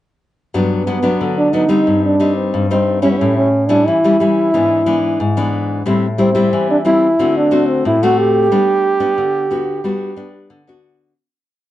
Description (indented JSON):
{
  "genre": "samba",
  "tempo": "90 BPM",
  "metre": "4/4",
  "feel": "straight",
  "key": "G major",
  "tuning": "A4 = 440 Hz",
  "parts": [
    { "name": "nylon-string guitar", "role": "accompaniment", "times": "0.5-11.1 s", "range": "G2 to F#4", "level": "-16 LUFS", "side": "left 2 dB", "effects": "none" },
    { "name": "breathy trombone", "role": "melody", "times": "0.9-10.5 s", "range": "B3 to G4", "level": "-14 LUFS", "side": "right 1 dB", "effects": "none" }
  ],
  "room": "moderate small room reverb, RT60 0.5 s",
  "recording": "nothing above 10.4 kHz",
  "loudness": "-12 LUFS",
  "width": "side -14 dB against mid",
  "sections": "0.5-11.2 A section",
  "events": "fade-out 8.5-11.2",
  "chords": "0.5 Gmaj7; 1.9 Cm/G; 3.2 A7; 4.5 E7/G#; 5.9 Am7; 7.2 D7; 8.5 Gmaj7"
}